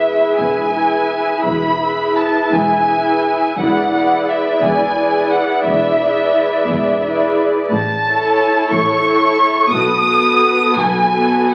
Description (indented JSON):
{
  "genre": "classical, slow romantic movement for string orchestra",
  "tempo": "53-61 BPM (dotted quarters)",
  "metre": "12/8",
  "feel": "rubato",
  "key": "E major",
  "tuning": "A4 = 438 Hz",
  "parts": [
    { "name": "muted symphonic violin section", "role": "melody", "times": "0.0-11.5 s", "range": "E5 to D#6", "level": "-18 LUFS", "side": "equal", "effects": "none" },
    { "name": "muted symphonic violin section", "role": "second line", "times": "0.0-11.5 s", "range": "A4 to E5", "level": "-22 LUFS", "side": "equal", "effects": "none" },
    { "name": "muted symphonic viola section", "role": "accompaniment", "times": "0.0-11.5 s", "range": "B3 to A4", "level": "-21 LUFS", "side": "equal", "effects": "none" },
    { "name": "muted symphonic cello section", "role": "bass", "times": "0.0-11.5 s", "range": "E2 to B2", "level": "-30 LUFS", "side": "equal", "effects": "none" },
    { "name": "muted symphonic double bass section", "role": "bass", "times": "0.0-11.5 s", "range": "E1 to B1", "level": "-29 LUFS", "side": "equal", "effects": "none" }
  ],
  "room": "wet large studio reverb, RT60 1.3 s",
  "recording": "very old 78 rpm record, vinyl crackle",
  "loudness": "-15 LUFS",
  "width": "mono",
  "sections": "0.0-11.5 A section",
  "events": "none",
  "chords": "0.0 E; 7.7 A; 9.7 B7"
}